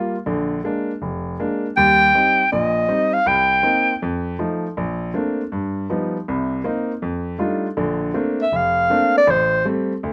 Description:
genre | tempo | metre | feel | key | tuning
jazz | 160 BPM | 4/4 | swing 66% on 8ths | Bb major | A4 = 439 Hz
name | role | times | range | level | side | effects
clear baby grand piano | accompaniment | 0.0-10.1 s | F1 to F4 | -24 LUFS | equal | none
warm clarinet | melody | 1.8-4.0, 8.4-9.7 s | C5 to G5 | -17 LUFS | equal | none
room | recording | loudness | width
light reverb | rough home demo mix | -20 LUFS | mono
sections
0.0-7.8 A section; 7.8-10.1 B section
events
clarinet solo 7.8-10.1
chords
0.3 Bb7; 1.8 Eb6; 3.3 Cm7; 4.0 F7; 4.8 Bbmaj9; 5.5 Gaug7; 6.3 Cm7; 7.0 F13; 7.8 Bbmaj9; 9.3 Am7

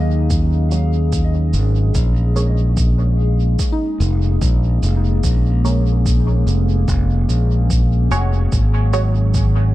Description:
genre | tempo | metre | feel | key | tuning
ambient dub | 73 BPM | 4/4 | swing 57% on 16ths | Bb minor | A4 = 443 Hz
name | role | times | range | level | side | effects
warbly tape-like pad | sustained chords | 0.0-9.7 s | Gb3 to Ab4 | -25 LUFS | left 1 dB | chorus, built-in reverb
soft synth bell | arpeggios | 0.0-8.5 s | Eb4 to F5 | -31 LUFS | left 2 dB | chorus, phaser, dub echo
modern bright fingered electric bass | bass | 0.0-9.7 s | F1 to Eb2 | -15 LUFS | equal | none
cabasa | drums | 0.3-9.5 s | none | -32 LUFS | right 5 dB | dub echo
electronic kick drum | drums | 0.3-9.5 s | none | -20 LUFS | equal | overdrive
filtered dub chord stab | stabs | 0.7-9.1 s | Gb4 to Db5 | -27 LUFS | right 2 dB | phaser, vintage 12-bit sampler grit, dub echo
room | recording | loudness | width
digital ambience | none | -14 LUFS | side -16 dB against mid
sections
0.0-9.7 A section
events
none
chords
0.0 Ab7sus4; 1.9 Bbm7; 8.5 Ab7sus4

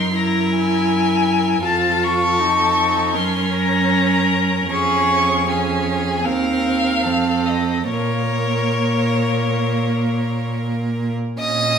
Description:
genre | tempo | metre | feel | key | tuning
classical, slow romantic movement for string quartet | 66-83 BPM | 4/4 | rubato | Bb minor | A4 = 440 Hz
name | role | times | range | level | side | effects
rich violin | melody | 0.0-11.8 s | Db5 to Eb6 | -20 LUFS | left 4 dB | none
clear violin | second line | 0.0-11.8 s | Ab4 to Eb5 | -24 LUFS | equal | none
rich viola | accompaniment | 0.0-11.8 s | Bb3 to F4 | -22 LUFS | right 2 dB | none
rich cello | bass | 0.0-11.8 s | Eb2 to Bb2 | -22 LUFS | right 3 dB | none
room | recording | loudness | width
wet stone room reverb, RT60 1.3 s | minimal, uncompressed stereo recording | -16 LUFS | side -7 dB against mid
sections
0.0-11.4 A section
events
none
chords
0.2 Gb7; 1.6 F; 3.1 Gb; 4.7 Db/F; 6.2 Bbsus24/Eb; 7.0 F7; 7.9 Bbm

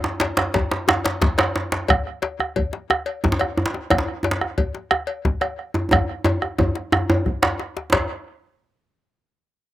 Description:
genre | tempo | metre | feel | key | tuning
west african traditional, West African drum ensemble | 119 BPM (dotted quarters) | 12/8 | straight | none | none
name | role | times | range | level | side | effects
bombo | percussion | 0.0-8.1 s | none | -22 LUFS | right 2 dB | none
djembe | percussion | 0.0-8.1 s | none | -21 LUFS | right 1 dB | slapback echo
cowbell | percussion | 0.2-8.1 s | none | -27 LUFS | left 6 dB | slapback echo
djembe | percussion | 0.2-8.1 s | none | -27 LUFS | left 3 dB | none
room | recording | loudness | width
little or no reverb | recorded outdoors, with no room sound | -19 LUFS | side -14 dB against mid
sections
0.0-7.9 A section; 7.9-9.7 B section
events
drum fill 5.9-7.9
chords
none

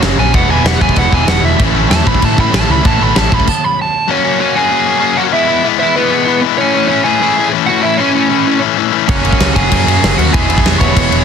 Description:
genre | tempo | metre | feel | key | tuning
punk rock | 192 BPM | 4/4 | straight | unclear | A4 = 440 Hz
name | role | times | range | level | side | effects
biting overdriven guitar | riff | 0.0-3.5, 9.1-11.2 s | F#2 to F#4 | -21 LUFS | equal | none
distorted electric guitar | riff | 0.0-11.2 s | A2 to F#4 | -14 LUFS | left 15 dB | distortion
distorted electric guitar | riff | 0.0-3.5, 9.1-11.2 s | E2 to A3 | -18 LUFS | right 15 dB | overdrive
overdriven picked electric bass | bass | 0.0-3.4, 9.1-11.2 s | E1 to A2 | -16 LUFS | equal | none
big rock drum kit | drums | 0.0-3.5, 9.1-11.2 s | crash cymbal, kick drum, snare drum | -14 LUFS | equal | none
dark smooth lead guitar | melody | 0.2-11.2 s | B3 to C#6 | -15 LUFS | right 4 dB | overdrive
room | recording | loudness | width
little or no reverb | dense, heavily limited modern master | -9 LUFS | side -7 dB against mid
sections
0.0-4.1 A section; 4.1-11.2 B section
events
lead electric guitar solo 0.0-4.1; stop 3.5-4.1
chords
0.3 E; 1.6 A; 4.1 F#; 5.3 E; 6.6 A; 9.1 F#; 10.3 E

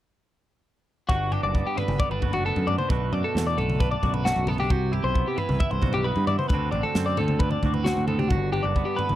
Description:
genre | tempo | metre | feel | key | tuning
math rock and midwest emo | 133 BPM | 4/4 | straight | G major | A4 = 440 Hz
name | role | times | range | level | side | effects
twangy electric guitar | accompaniment | 1.1-9.2 s | D2 to G4 | -31 LUFS | right 11 dB | none
twelve-string electric guitar | arpeggios | 1.1-9.2 s | F#4 to E5 | -27 LUFS | left 3 dB | none
growling picked electric bass | bass | 1.1-9.2 s | F#1 to G2 | -26 LUFS | equal | overdrive
crisp fusion drum kit | drums | 1.1-9.2 s | kick drum, snare drum, toms | -27 LUFS | equal | none
room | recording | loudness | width
little or no reverb | dry, close 1970s-style studio recording | -22 LUFS | side -13 dB against mid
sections
1.1-9.2 A section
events
none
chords
1.1 Gmaj9; 2.9 Bm7; 4.7 Cmaj7; 6.5 D7; 8.3 Gmaj7

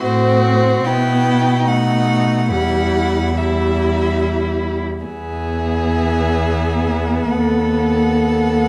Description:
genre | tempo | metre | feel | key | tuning
classical, slow romantic movement for string quartet | 69-83 BPM | 3/4 | rubato | E minor, E major from 5.1 s | A4 = 438 Hz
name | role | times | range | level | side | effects
rich violin | melody | 0.0-8.7 s | C5 to G5 | -26 LUFS | equal | none
rich violin | second line | 0.0-8.7 s | D#4 to A4 | -24 LUFS | equal | none
rich viola | accompaniment | 0.0-8.7 s | G3 to C4 | -23 LUFS | equal | none
rich cello | bass | 0.0-8.7 s | D#2 to B2 | -20 LUFS | equal | none
room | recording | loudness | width
moderate scoring stage reverb, RT60 1.6 s | none | -17 LUFS | mono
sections
0.0-5.1 A section; 5.1-8.7 B section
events
none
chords
0.0 F#dim/A; 0.9 Em/B; 1.7 B7; 2.5 Em; 5.1 E; 7.3 B7/D#

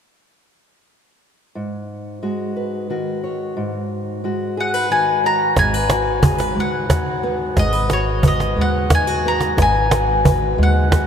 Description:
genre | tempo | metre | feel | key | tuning
acoustic folk duo or small band | 60 BPM (dotted quarters) | 6/8 | straight | G# minor | A4 = 440 Hz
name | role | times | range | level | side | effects
fingerpicked steel-string acoustic guitar | accompaniment | 1.6-11.1 s | G#2 to C#5 | -22 LUFS | equal | none
mandolin | melody | 4.6-11.1 s | C#5 to A#5 | -19 LUFS | left 2 dB | tape echo
upright bass | bass | 5.6-11.1 s | G#1 to D#2 | -21 LUFS | equal | none
cajon | percussion | 5.6-11.1 s | none | -19 LUFS | right 1 dB | none
room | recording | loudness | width
wet cathedral reverb, RT60 7.3 s | in a vast, echoing space | -16 LUFS | side -8 dB against mid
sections
1.6-5.6 A section; 5.6-11.1 B section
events
none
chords
1.6 G#m7

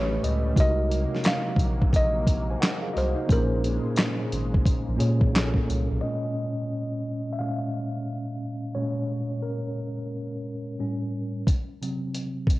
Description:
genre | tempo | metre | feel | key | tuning
lo-fi hip hop | 88 BPM | 4/4 | swing 65% on 16ths | Bb minor | A4 = 442 Hz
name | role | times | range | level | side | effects
kalimba | melody | 0.0-5.3 s | Bb4 to F5 | -30 LUFS | equal | low-pass filter, cassette tape
tine electric piano | accompaniment | 0.0-12.6 s | A2 to Ab5 | -28 LUFS | equal | fast stereo tremolo, cassette tape, low-pass filter
lush unison pad | sustained chords | 0.0-6.0 s | C3 to Db4 | -37 LUFS | right 1 dB | chorus, phaser, low-pass filter, cassette tape
soft dub sub bass | bass | 0.0-6.0 s | Ab1 to Bb2 | -26 LUFS | equal | tube saturation
dusty soul sampler-style drum kit | drums | 0.2-5.9, 11.5-12.6 s | handclaps, hi-hat, kick drum, snare drum | -23 LUFS | equal | vintage 12-bit sampler grit, cassette tape
room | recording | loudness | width
light reverb, digital ambience | home recording on cassette | -24 LUFS | side -18 dB against mid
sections
0.0-6.0 A section; 6.0-12.6 B section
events
tine electric piano solo 6.0-12.6; filter sweep on tine electric piano 6.0-12.6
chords
0.0 A9; 0.6 Ab7; 3.3 Bbm7; 10.8 A7; 11.5 N.C.

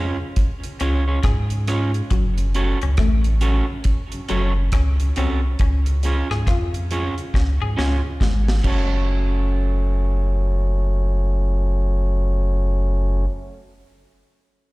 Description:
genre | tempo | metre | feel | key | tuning
roots reggae | 69 BPM | 4/4 | swing 62% on 16ths | F# harmonic minor | A4 = 439 Hz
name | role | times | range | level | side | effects
electric guitar at the edge of break-up | accompaniment | 0.0-13.3 s | C#4 to C#5 | -28 LUFS | right 3 dB | tape echo, slapback echo
tonewheel organ | accompaniment | 0.0-13.3 s | F#2 to C#4 | -32 LUFS | left 2 dB | stopped rotary speaker, slapback echo
warm sub bass | bass | 0.0-13.3 s | F#1 to G#2 | -19 LUFS | equal | none
deep reggae drum kit | drums | 0.4-8.9 s | crash cymbal, hi-hat, kick drum, rim click, snare drum | -22 LUFS | equal | none
electric guitar at the edge of break-up | riff | 0.8-8.5 s | F#3 to G#4 | -29 LUFS | left 7 dB | slapback echo
room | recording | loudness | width
small room reverb | live gig heard through the venue's PA, recital hall reverb | -18 LUFS | side -21 dB against mid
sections
0.0-9.1 A section; 9.1-12.6 B section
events
drum fill 7.3-9.1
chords
0.0 C#; 2.1 F#m; 5.6 C#; 8.7 F#m

